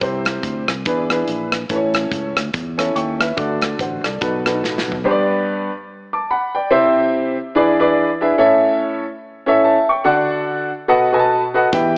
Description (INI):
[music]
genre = uptempo gospel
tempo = 144 BPM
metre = 4/4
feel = swing 59% on 8ths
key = G major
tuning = A4 = 441 Hz
[part]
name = warm upright piano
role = accompaniment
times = 0.0-12.0 s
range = G2 to D6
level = -15 LUFS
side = equal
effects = none
[part]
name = fingered electric bass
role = bass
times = 0.0-5.0, 11.7-12.0 s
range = A1 to E2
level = -26 LUFS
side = equal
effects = none
[part]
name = modern studio drum kit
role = drums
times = 0.0-5.0, 11.7-11.8 s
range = hi-hat, kick drum, rim click, snare drum, toms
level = -22 LUFS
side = equal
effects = none
[sound]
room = light reverb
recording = AM radio sound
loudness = -15 LUFS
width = side -32 dB against mid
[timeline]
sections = 0.0-5.1 A section; 5.1-12.0 B section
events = drum fill 4.6-5.1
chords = 0.0 C; 0.9 E7; 1.7 A; 3.4 D; 4.2 B7; 5.1 G; 6.7 C; 7.6 E7; 8.4 A; 10.1 D; 10.9 B7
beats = | 0.01 0.43 0.86 1.28 | 1.70 2.12 2.54 2.96 | 3.38 3.80 4.22 4.64 | 5.06 5.47 5.89 6.31 | 6.73 7.14 7.56 7.98 | 8.39 8.81 9.23 9.64 | 10.06 10.48 10.90 11.31 | 11.73